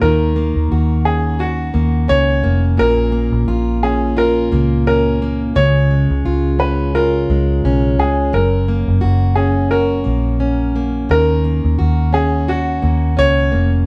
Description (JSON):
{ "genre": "acoustic pop", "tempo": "87 BPM", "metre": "4/4", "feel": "swing 55% on 16ths", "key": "Eb minor", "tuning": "A4 = 440 Hz", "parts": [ { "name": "bright upright piano", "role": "melody", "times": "0.0-13.7 s", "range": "Gb4 to Db5", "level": "-21 LUFS", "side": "equal", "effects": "none" }, { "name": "fingerpicked plugged-in steel-string acoustic guitar", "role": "accompaniment", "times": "0.0-13.9 s", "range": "Gb2 to Gb4", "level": "-21 LUFS", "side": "equal", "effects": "none" }, { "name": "vintage muted fingered electric bass", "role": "bass", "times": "0.0-13.8 s", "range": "F1 to Eb2", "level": "-19 LUFS", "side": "equal", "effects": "none" } ], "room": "moderate studio reverb, RT60 0.8 s", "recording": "band playing live in one room", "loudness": "-16 LUFS", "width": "mono", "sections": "0.0-13.9 A section", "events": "none", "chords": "0.0 Ebm7; 2.8 Bbm; 5.6 Db; 8.3 Gb; 11.1 Ebm7" }